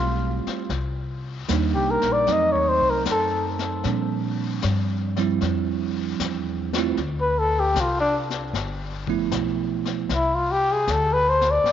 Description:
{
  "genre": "jazz ballad",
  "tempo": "77 BPM",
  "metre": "4/4",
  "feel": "swing 69% on 8ths",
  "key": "unclear",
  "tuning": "A4 = 441 Hz",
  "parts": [
    { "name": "breathy trumpet", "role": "melody", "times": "0.0-11.7 s", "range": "D4 to Eb5", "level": "-22 LUFS", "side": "left 2 dB", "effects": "none" },
    { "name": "bell-like tine electric piano", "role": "accompaniment", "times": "0.0-10.1 s", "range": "F3 to G4", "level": "-26 LUFS", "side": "right 12 dB", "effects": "none" },
    { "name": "upright bass", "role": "bass", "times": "0.0-11.7 s", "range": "G1 to Bb2", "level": "-27 LUFS", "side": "left 2 dB", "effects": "none" },
    { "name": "vintage brush drum kit", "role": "drums", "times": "0.5-11.7 s", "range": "brushed snare drum, hi-hat, kick drum, snare drum", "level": "-33 LUFS", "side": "left 9 dB", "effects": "none" }
  ],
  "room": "wet spring reverb, RT60 2.9 s",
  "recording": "1960s-style stereo with parts hard left and right, nothing above 7.5 kHz",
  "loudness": "-21 LUFS",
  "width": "side -10 dB against mid",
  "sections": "0.0-11.7 A section",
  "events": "trumpet solo 0.0-11.7",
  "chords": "0.0 Fmaj9; 0.7 Cm9; 2.3 F7b9; 3.8 Bb6; 7.0 Csus2; 8.5 G13; 10.1 N.C."
}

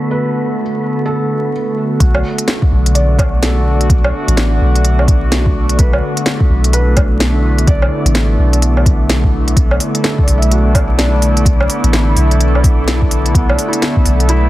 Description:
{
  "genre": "future garage",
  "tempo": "127 BPM",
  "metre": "4/4",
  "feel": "swing 62% on 16ths",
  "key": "B minor",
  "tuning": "A4 = 435 Hz",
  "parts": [
    { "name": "felt-muted upright piano", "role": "accompaniment", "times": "0.0-14.5 s", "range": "B3 to E5", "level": "-24 LUFS", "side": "right 1 dB", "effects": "vintage 12-bit sampler grit, sidechain pumping, dub echo" },
    { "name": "warbly tape-like pad", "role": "sustained chords", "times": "0.0-14.5 s", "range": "D3 to A4", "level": "-18 LUFS", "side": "equal", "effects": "chorus, built-in reverb, vintage 12-bit sampler grit, sidechain pumping" },
    { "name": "wind-like tuned noise texture", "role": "texture", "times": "0.0-14.5 s", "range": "B3 to E5", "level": "-26 LUFS", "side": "left 2 dB", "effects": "built-in reverb" },
    { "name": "soft 808-style bass", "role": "bass", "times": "2.0-14.5 s", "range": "A1 to B1", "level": "-13 LUFS", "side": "equal", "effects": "sidechain pumping" },
    { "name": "electronic kick drum", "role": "drums", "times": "2.0-14.0 s", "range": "none", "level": "-13 LUFS", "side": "equal", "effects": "overdrive" },
    { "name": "organic electronic drum kit", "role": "drums", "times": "2.0-14.4 s", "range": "hi-hat, snare drum, woodblock", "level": "-18 LUFS", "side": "equal", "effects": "overdrive" }
  ],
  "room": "light reverb",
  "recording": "dense, heavily limited modern master, vinyl crackle, low-pass filter",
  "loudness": "-11 LUFS",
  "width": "side -16 dB against mid",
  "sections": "0.0-2.0 A section; 2.0-14.5 B section",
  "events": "filter sweep 0.0-2.0",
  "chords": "0.0 Bm7"
}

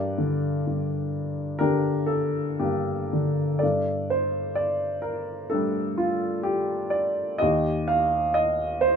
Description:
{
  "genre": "classical, lyrical solo piano",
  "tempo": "64 BPM",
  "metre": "4/4",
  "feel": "rubato",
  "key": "G minor",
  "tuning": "A4 = 440 Hz",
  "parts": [
    { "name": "warm baby grand piano", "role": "solo", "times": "0.0-9.0 s", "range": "Eb2 to F5", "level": "-23 LUFS", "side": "equal", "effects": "none" }
  ],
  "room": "moderate studio reverb, RT60 0.7 s",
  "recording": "minimal, uncompressed stereo recording",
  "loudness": "-23 LUFS",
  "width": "side -6 dB against mid",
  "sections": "0.0-3.6 A section; 3.6-9.0 B section",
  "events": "none",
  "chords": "0.0 Gm; 3.6 Gsus2; 7.4 Eb"
}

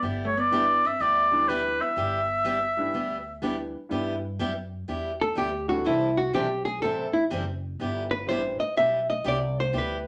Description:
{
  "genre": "country, western swing",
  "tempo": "124 BPM",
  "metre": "4/4",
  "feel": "swing 66% on 8ths",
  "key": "G major",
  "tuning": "A4 = 441 Hz",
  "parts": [
    { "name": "warm oboe", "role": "melody", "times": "0.0-3.4 s", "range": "B4 to E5", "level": "-26 LUFS", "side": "equal", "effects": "none" },
    { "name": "hollow-body jazz guitar", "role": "second line", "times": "0.0-10.1 s", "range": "G3 to E5", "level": "-29 LUFS", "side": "equal", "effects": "none" },
    { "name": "picked steel-string acoustic guitar", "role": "accompaniment", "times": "0.0-10.0 s", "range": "C3 to A4", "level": "-34 LUFS", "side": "equal", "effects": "none" },
    { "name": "upright bass", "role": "bass", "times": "0.0-10.1 s", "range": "F#1 to G2", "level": "-38 LUFS", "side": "equal", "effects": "none" },
    { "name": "bright upright piano", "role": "accompaniment", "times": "0.5-8.6 s", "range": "E3 to E4", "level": "-36 LUFS", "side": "equal", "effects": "none" }
  ],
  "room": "wet studio reverb, RT60 0.6 s",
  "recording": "none",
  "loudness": "-26 LUFS",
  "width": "mono",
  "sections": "0.0-3.9 A section; 3.9-10.1 B section",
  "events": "hollow-body jazz guitar solo 3.9-10.1",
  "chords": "0.0 G6; 5.9 C6; 7.8 G6"
}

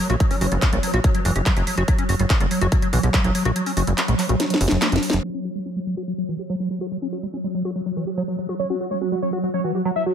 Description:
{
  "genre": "psychedelic trance",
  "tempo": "143 BPM",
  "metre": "4/4",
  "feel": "straight",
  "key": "F# major",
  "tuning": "A4 = 437 Hz",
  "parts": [
    { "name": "swarming drone", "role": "sustained chords", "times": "0.0-10.1 s", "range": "F#3", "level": "-27 LUFS", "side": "right 2 dB", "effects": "built-in reverb, sidechain pumping" },
    { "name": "liquid acid bass", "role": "riff", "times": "0.0-10.1 s", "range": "E3 to G4", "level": "-26 LUFS", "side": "equal", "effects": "chorus, auto-pan, sidechain pumping, digital delay" },
    { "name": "plucky analog bass", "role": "bass", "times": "0.1-5.2 s", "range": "F#1 to B1", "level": "-21 LUFS", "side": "equal", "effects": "none" },
    { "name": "techno drum kit", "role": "drums", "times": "0.1-5.3 s", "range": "crash cymbal, handclaps, hi-hat, snare drum", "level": "-25 LUFS", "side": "equal", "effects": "overdrive, small room ambience" },
    { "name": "electronic kick drum", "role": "drums", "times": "0.2-3.2 s", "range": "none", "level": "-20 LUFS", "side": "equal", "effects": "small room ambience" },
    { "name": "vowel-sweep wobble bass", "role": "second line", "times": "0.3-0.9 s", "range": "C#4", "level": "-34 LUFS", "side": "left 3 dB", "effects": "lush chorus, cassette tape, sidechain pumping, high-pass filter, digital delay" },
    { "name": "wide unison lead", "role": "melody", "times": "8.6-10.1 s", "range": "F#4 to E5", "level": "-24 LUFS", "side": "equal", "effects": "phaser, sidechain pumping, digital delay" }
  ],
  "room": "light reverb, digital ambience",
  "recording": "low-pass filter",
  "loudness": "-19 LUFS",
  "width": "side -8 dB against mid",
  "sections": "0.0-5.2 A section; 5.2-10.1 B section",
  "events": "kick drops out 3.6-5.2; drum fill 4.4-5.2; filter sweep on acid bass 5.2-10.1",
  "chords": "0.0 F#5"
}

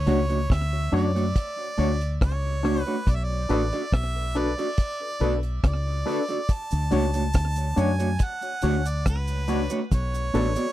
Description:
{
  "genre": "roots reggae",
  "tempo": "70 BPM",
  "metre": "4/4",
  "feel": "straight",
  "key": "unclear",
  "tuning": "A4 = 440 Hz",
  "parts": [
    { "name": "warm harmonica", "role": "melody", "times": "0.0-10.7 s", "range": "B4 to A5", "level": "-31 LUFS", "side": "right 2 dB", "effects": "tape echo" },
    { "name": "deep dub fingered electric bass", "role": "bass", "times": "0.0-10.6 s", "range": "A1 to F#2", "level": "-25 LUFS", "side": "equal", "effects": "none" },
    { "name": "mellow electric guitar", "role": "accompaniment", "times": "0.1-10.7 s", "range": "A3 to D5", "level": "-28 LUFS", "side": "right 2 dB", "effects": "tape echo" },
    { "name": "barky reed electric piano", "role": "stabs", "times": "0.1-10.5 s", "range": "D4 to C#5", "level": "-28 LUFS", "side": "left 6 dB", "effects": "overdrive, fast tremolo" },
    { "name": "deep reggae drum kit", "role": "drums", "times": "0.1-10.7 s", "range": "hi-hat, kick drum, rim click", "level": "-23 LUFS", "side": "equal", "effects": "none" },
    { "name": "cabasa", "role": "percussion", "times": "6.5-10.7 s", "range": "none", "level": "-43 LUFS", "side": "right 5 dB", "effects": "none" }
  ],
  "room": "little or no reverb",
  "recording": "dry, close 1970s-style studio recording",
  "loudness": "-22 LUFS",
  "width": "side -14 dB against mid",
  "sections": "0.0-10.7 A section",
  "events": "none",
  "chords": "0.0 Dmaj7; 3.1 Bm7; 6.5 Dmaj7; 9.9 Bm7"
}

